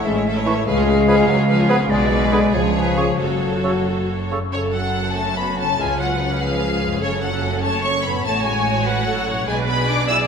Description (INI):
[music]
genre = classical, dramatic, fast romantic movement for symphony orchestra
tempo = 97 BPM (dotted quarters)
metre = 6/8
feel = rubato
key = F# minor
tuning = A4 = 440 Hz
[part]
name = clear symphonic violin section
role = melody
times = 0.0-10.2 s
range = C#5 to E6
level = -24 LUFS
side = left 3 dB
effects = none
[part]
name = concert flute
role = second line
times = 0.0-4.2 s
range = A4 to E#5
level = -27 LUFS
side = equal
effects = none
[part]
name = rich symphonic violin section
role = second line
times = 0.0-10.3 s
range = C#4 to D5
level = -28 LUFS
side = left 1 dB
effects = none
[part]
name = clear symphonic viola section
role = accompaniment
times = 0.0-10.3 s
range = C#4 to D5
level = -27 LUFS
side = right 3 dB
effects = none
[part]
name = mellow French horn section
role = sustained chords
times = 0.0-10.2 s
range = C#3 to E4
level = -22 LUFS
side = left 2 dB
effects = none
[part]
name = concert harp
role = arpeggios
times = 0.0-10.3 s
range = F#2 to B4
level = -28 LUFS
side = left 6 dB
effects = none
[part]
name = rich symphonic double bass section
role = bass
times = 0.0-10.3 s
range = F#1 to C#2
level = -26 LUFS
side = right 5 dB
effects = none
[part]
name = clear symphonic cello section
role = bass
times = 0.1-10.3 s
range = C#2 to B2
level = -27 LUFS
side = right 3 dB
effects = none
[part]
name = clear clarinet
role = second line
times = 0.5-4.4 s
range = E4 to A4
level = -31 LUFS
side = left 1 dB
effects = none
[part]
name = mellow cor anglais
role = second line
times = 0.5-4.4 s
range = B4 to C#5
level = -29 LUFS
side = right 4 dB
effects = none
[part]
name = mellow bassoon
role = accompaniment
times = 0.5-4.4 s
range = C#3 to E#3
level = -31 LUFS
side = right 2 dB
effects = none
[sound]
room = wet concert hall reverb, RT60 2.2 s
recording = minimal, uncompressed stereo recording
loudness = -17 LUFS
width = side -6 dB against mid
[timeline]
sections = 0.0-4.5 A section; 4.5-10.3 B section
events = none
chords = 0.0 A; 0.7 C#7; 1.9 G#dim/B; 2.5 C#; 3.2 F#m; 5.8 C#7; 7.0 F#m; 8.2 F#m/A; 9.5 G#dim/B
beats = 0.05 | 0.67 1.28 | 1.90 2.54 | 3.20 3.86 | 4.53 5.16 | 5.79 6.41 | 7.02 7.64 | 8.25 8.86 | 9.47 10.08